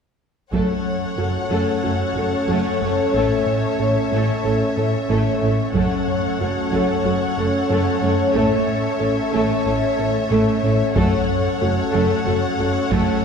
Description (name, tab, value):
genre	cinematic, hybrid orchestral and electronic film score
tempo	92 BPM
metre	4/4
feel	straight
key	F# minor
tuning	A4 = 439 Hz
part	warm symphonic violin section	second line	0.5-13.2 s	C#5 to F#5	-25 LUFS	left 5 dB	none
part	clear symphonic viola section	accompaniment	0.5-13.2 s	A3 to A4	-26 LUFS	left 2 dB	none
part	airy breathy pad	sustained chords	0.5-13.2 s	A3 to C#5	-22 LUFS	equal	chorus
part	soft round pluck	arpeggios	0.5-13.1 s	F#3 to A4	-27 LUFS	right 3 dB	chorus, ping-pong delay
part	smooth synth bass	riff	0.5-13.1 s	F#2 to A2	-25 LUFS	right 1 dB	none
part	rich symphonic cello section	bass	0.5-13.0 s	F#2 to A2	-28 LUFS	right 2 dB	none
part	rich symphonic double bass section	bass	0.5-13.0 s	F#1 to A1	-30 LUFS	right 2 dB	none
part	solo taiko drums	drums	0.5-1.8, 5.7-7.0, 11.0-13.2 s	none	-28 LUFS	left 1 dB	none
room	wet scoring stage reverb, RT60 2.1 s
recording	heard from further back in the room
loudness	-17 LUFS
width	side -6 dB against mid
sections	0.5-13.2 A section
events	build-up 0.5-13.2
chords	0.5 F#m; 3.1 A; 5.7 F#m; 8.4 A; 11.0 F#m